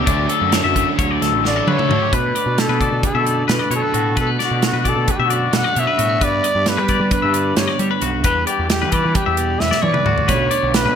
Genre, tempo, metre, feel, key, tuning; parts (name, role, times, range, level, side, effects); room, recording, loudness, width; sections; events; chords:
math rock and midwest emo; 264 BPM (eighths); 9/8; straight; A4 = 437 Hz
twelve-string electric guitar; accompaniment; 0.0-11.0 s; D2 to G4; -25 LUFS; right 6 dB; spring reverb
twangy electric guitar; arpeggios; 0.0-11.0 s; F#4 to E5; -22 LUFS; left 9 dB; lush chorus
crunchy overdriven guitar; riff; 0.0-2.1 s; D3 to D4; -23 LUFS; right 1 dB; ensemble chorus
fuzz picked electric bass; bass; 0.0-11.0 s; A1 to G3; -22 LUFS; equal; overdrive
modern studio drum kit; drums; 0.1-10.8 s; hi-hat, kick drum, snare drum, toms; -21 LUFS; right 1 dB
growling trumpet; melody; 1.5-11.0 s; F#4 to F#5; -20 LUFS; equal; digital delay
moderate plate reverb, RT60 1.7 s, small room ambience; bright 1980s-style digital production; -15 LUFS; side -8 dB against mid
0.0-2.1 A section; 2.1-11.0 B section
drum fill 1.4-2.1, 9.6-10.3
0.1 Dmaj7; 2.1 Bm7; 6.2 G; 8.3 Em7; 10.3 Bm7